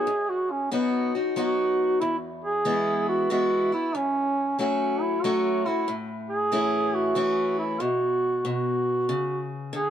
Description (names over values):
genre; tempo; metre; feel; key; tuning
country; 93 BPM; 3/4; swing 66% on 8ths; E major; A4 = 440 Hz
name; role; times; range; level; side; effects
mellow duduk; melody; 0.0-9.9 s; B3 to G#4; -24 LUFS; right 2 dB; none
picked acoustic archtop guitar; accompaniment; 0.0-9.9 s; E2 to F#4; -28 LUFS; left 3 dB; none
room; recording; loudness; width
light reverb; dark, warm production; -23 LUFS; side -10 dB against mid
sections
0.0-2.0 A section; 2.0-9.9 B section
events
duduk solo 0.0-2.0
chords
0.0 B; 2.0 E; 3.9 F#m; 5.9 A; 7.8 B5